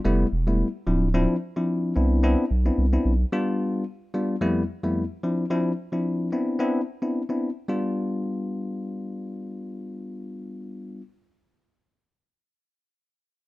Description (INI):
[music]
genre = afrobeats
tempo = 110 BPM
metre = 4/4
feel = swing 55% on 16ths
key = G mixolydian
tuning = A4 = 440 Hz
[part]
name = bell-like tine electric piano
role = accompaniment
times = 0.0-11.0 s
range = F2 to F4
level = -25 LUFS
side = left 1 dB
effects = none
[part]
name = saturated sub bass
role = bass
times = 0.1-3.3 s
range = D1 to C2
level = -22 LUFS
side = equal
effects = none
[sound]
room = light reverb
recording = rough home demo mix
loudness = -23 LUFS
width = side -18 dB against mid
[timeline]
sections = 0.0-7.7 A section; 7.7-12.1 B section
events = none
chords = 0.1 Fmaj9#11; 0.9 Dm9; 2.0 Cmaj9; 3.3 G7; 4.4 Fmaj9#11; 5.2 Dm9; 6.3 Cmaj9; 7.7 G7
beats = 0.05 0.60 | 1.14 1.69 2.23 2.78 | 3.32 3.87 4.42 4.96 | 5.51 6.05 6.60 7.14 | 7.69 8.23 8.78 9.32 | 9.87 10.41 10.96